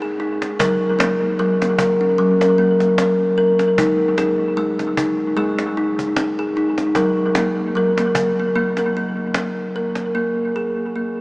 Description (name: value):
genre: world meditative, meditative tuned percussion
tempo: 75 BPM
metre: 4/4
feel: swing 55% on 16ths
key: unclear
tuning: A4 = 440 Hz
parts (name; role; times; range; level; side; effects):
- kalimba; arpeggios; 0.0-11.2 s; Gb3 to Bb4; -16 LUFS; equal; analog delay
- cajon; percussion; 0.2-10.1 s; none; -26 LUFS; equal; none
room: wet cathedral reverb, RT60 6.1 s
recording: dreamy mix soaked in reverb, small speaker sound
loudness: -16 LUFS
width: side -26 dB against mid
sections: 0.0-10.1 A section; 10.1-11.2 B section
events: none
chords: 0.0 Ab5; 0.6 Gb; 3.8 Ab5; 7.0 Gb; 8.6 N.C.; 10.1 Ab5/Bb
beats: | 0.59 1.39 2.19 2.98 | 3.78 4.58 5.37 6.17 | 6.97 7.76 8.56 9.35 | 10.15 10.94